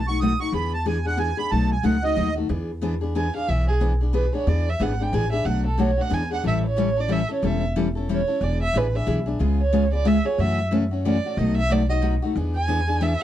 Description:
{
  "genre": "acoustic string swing (jazz manouche)",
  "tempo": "183 BPM",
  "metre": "3/4",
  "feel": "swing 60% on 8ths",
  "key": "E mixolydian",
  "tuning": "A4 = 443 Hz",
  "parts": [
    { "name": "accordion", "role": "melody", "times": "0.0-2.3 s", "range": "D#5 to D#6", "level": "-26 LUFS", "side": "right 5 dB", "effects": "light tremolo tuning" },
    { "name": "upright bass", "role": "bass", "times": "0.0-13.1 s", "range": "E1 to F#2", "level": "-24 LUFS", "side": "equal", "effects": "none" },
    { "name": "picked steel-string acoustic guitar", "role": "accompaniment", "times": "0.1-13.1 s", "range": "B2 to A4", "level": "-24 LUFS", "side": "left 2 dB", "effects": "none" },
    { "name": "warm violin", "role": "second line", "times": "3.2-13.2 s", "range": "G#4 to G#5", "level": "-26 LUFS", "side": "right 3 dB", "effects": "none" }
  ],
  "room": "little or no reverb",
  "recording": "dark, warm production",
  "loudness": "-20 LUFS",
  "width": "side -12 dB against mid",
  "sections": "0.0-2.5 A section; 2.5-13.2 A section",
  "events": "accordion solo 0.0-2.5; violin solo 2.5-13.2",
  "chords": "0.0 B7; 0.5 E7; 1.5 B7; 2.5 E7; 5.5 Bm7; 6.1 E7; 6.4 A7; 8.4 E7; 9.4 C#7; 10.4 F#m7; 11.4 B7; 12.4 E7"
}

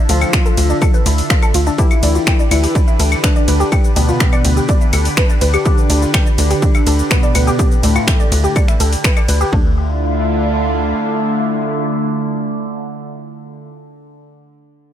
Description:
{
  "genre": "melodic techno",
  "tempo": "124 BPM",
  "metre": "4/4",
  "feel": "straight",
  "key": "D dorian",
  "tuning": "A4 = 440 Hz",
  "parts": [
    { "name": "lush unison pad", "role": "sustained chords", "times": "0.0-13.7 s", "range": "D3 to E5", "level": "-24 LUFS", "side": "right 1 dB", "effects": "chorus, phaser, sidechain pumping" },
    { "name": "overtone-sweeping drone", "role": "drone", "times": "0.0-13.7 s", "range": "D3", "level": "-28 LUFS", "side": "right 2 dB", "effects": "chorus, built-in reverb, phaser, sidechain pumping" },
    { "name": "analog synth brass", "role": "melody", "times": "0.1-13.7 s", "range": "A2 to F4", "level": "-21 LUFS", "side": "left 1 dB", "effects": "chorus, sidechain pumping, digital delay" },
    { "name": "woody wave-folded pluck", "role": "arpeggios", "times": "0.1-9.8 s", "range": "A3 to G6", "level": "-21 LUFS", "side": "equal", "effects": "ensemble chorus, cassette tape, sidechain pumping, ping-pong delay" },
    { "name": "tight sequencer bass", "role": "bass", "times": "0.1-10.9 s", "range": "D2", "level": "-15 LUFS", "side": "equal", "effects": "sidechain pumping" },
    { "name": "techno drum kit", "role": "drums", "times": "0.1-9.5 s", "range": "claves, finger snaps, hi-hat, ride cymbal, shaker", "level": "-20 LUFS", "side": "left 1 dB", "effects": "overdrive, sidechain pumping on cymbals, sidechain pumping on perc, sidechain pumping on hats" },
    { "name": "electronic kick drum", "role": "drums", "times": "0.3-9.6 s", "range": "none", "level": "-14 LUFS", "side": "equal", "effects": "overdrive" }
  ],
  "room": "digital ambience",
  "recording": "none",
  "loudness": "-12 LUFS",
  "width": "side -10 dB against mid",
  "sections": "0.0-9.5 A section; 9.5-13.4 B section",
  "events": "drop 0.0-9.5",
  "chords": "0.0 Dmadd9; 1.8 G/D; 9.5 Dmadd9"
}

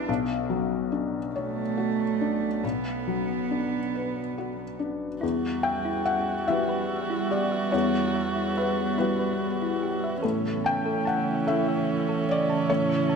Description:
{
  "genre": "neoclassical piano and strings",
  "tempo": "48 BPM (dotted quarters)",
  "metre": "6/8",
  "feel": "rubato",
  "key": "unclear",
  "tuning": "A4 = 444 Hz",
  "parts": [
    { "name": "warm cello", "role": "second line", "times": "0.0-13.2 s", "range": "E3 to B3", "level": "-31 LUFS", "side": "right 8 dB", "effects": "none" },
    { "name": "felt-muted upright piano", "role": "accompaniment", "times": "0.0-13.2 s", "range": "B1 to G5", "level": "-27 LUFS", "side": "left 4 dB", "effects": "none" },
    { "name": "dark viola", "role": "accompaniment", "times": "5.2-13.2 s", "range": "C#4 to F#4", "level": "-31 LUFS", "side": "right 4 dB", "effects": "none" },
    { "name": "glassy FM pad", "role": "sustained chords", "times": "5.6-13.2 s", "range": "C#3 to E5", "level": "-34 LUFS", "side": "left 2 dB", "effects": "ensemble chorus, built-in reverb" },
    { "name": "thumb-piano-like synth pluck", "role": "arpeggios", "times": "5.2-13.2 s", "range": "E4 to A5", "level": "-33 LUFS", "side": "equal", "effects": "chorus, tape echo" }
  ],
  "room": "moderate concert hall reverb, RT60 2.1 s",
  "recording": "none",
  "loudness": "-24 LUFS",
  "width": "side -5 dB against mid",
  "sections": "0.0-5.2 A section; 5.2-13.2 B section",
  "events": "none",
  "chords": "0.1 Dmaj7/B; 2.6 Bm; 5.2 Emadd9; 10.2 A"
}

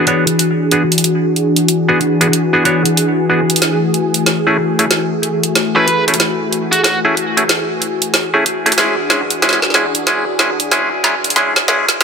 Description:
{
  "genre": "glitch hop",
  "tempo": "93 BPM",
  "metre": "4/4",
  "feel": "swing 63% on 16ths",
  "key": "unclear",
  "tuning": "A4 = 440 Hz",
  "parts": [
    { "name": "warm analog pad", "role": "sustained chords", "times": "0.0-12.0 s", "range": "E3 to G#4", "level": "-16 LUFS", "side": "left 1 dB", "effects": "chorus" },
    { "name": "clav", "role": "stabs", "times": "0.0-12.0 s", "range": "G#3 to C#5", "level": "-16 LUFS", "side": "equal", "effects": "low-pass filter, tape echo" },
    { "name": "drum and bass drum kit", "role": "drums", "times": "0.1-12.0 s", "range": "hi-hat, snare drum", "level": "-15 LUFS", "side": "right 1 dB", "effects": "high-pass filter on hats, high-pass filter on snare, high-pass filter on room" },
    { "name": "biting lead guitar", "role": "melody", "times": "5.8-7.0 s", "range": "F#4 to B4", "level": "-18 LUFS", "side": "right 1 dB", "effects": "overdrive, tape echo" }
  ],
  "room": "moderate plate reverb, RT60 2.7 s",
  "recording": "high-pass filter",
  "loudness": "-12 LUFS",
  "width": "side -6 dB against mid",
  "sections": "0.0-12.0 A section",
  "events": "build-up 0.0-12.0; filter sweep 0.0-12.0; drum fill 3.6-12.0",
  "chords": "0.0 E9; 3.6 F#m9; 8.8 E9"
}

